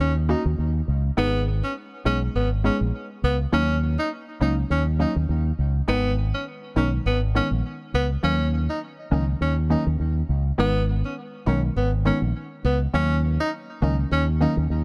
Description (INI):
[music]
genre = afrobeats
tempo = 102 BPM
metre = 4/4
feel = swing 55% on 16ths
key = Eb minor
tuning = A4 = 440 Hz
[part]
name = breathy tenor saxophone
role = melody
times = 0.0-14.6 s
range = Cb4 to Eb4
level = -30 LUFS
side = equal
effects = tape echo
[part]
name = fingered electric bass with an envelope filter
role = bass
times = 0.0-14.8 s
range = Ab1 to Eb2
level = -25 LUFS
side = equal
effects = none
[part]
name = hollow square pluck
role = accompaniment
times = 0.3-14.6 s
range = Eb3 to Ab4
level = -30 LUFS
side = equal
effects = chorus
[sound]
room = studio ambience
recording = none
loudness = -24 LUFS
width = mono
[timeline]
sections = 0.0-14.8 A section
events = none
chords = 0.0 Ebm7; 1.2 Abm; 3.5 Ebm7; 5.9 Abm; 8.2 Ebm7; 10.6 Abm; 12.9 Ebm7